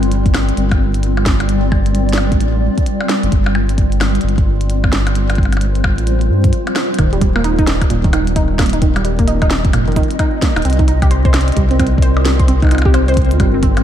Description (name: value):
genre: IDM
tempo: 131 BPM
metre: 4/4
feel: swing 62% on 16ths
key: G minor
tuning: A4 = 440 Hz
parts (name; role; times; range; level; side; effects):
- granular cloud pad; sustained chords; 0.0-13.8 s; G3 to Eb5; -20 LUFS; equal; built-in reverb, sidechain pumping
- round analog bass; bass; 0.0-13.8 s; Eb1 to G2; -16 LUFS; equal; tube saturation
- glitchy drum kit; drums; 0.0-13.8 s; hi-hat, percussion blips, snare drum; -22 LUFS; equal; none
- electronic kick drum; drums; 0.3-13.7 s; none; -16 LUFS; equal; none
- warbly dusty pluck; arpeggios; 7.0-13.7 s; Bb2 to C5; -19 LUFS; right 2 dB; chorus, ping-pong delay
room: light reverb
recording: dark, warm production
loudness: -12 LUFS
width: side -10 dB against mid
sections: 0.0-7.0 A section; 7.0-13.8 B section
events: break 6.5-7.0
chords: 0.0 Gm7; 7.0 Eb; 10.7 Cm